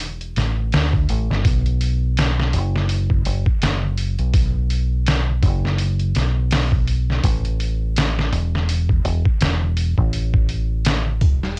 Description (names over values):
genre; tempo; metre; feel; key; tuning
trip hop; 83 BPM; 4/4; swing 58% on 16ths; B minor; A4 = 440 Hz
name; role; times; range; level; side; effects
deep dub fingered electric bass; bass; 0.0-11.6 s; E1 to D2; -22 LUFS; equal; none
trip hop sampler-style drum kit; drums; 0.0-11.6 s; hi-hat, kick drum, snare drum; -22 LUFS; equal; cassette tape
room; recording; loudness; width
little or no reverb; home recording on cassette; -20 LUFS; mono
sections
0.0-11.6 A section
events
none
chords
none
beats
0.01 0.73 | 1.45 2.17 2.90 3.62 | 4.34 5.07 5.79 6.51 | 7.23 7.96 8.68 9.40 | 10.13 10.85 11.57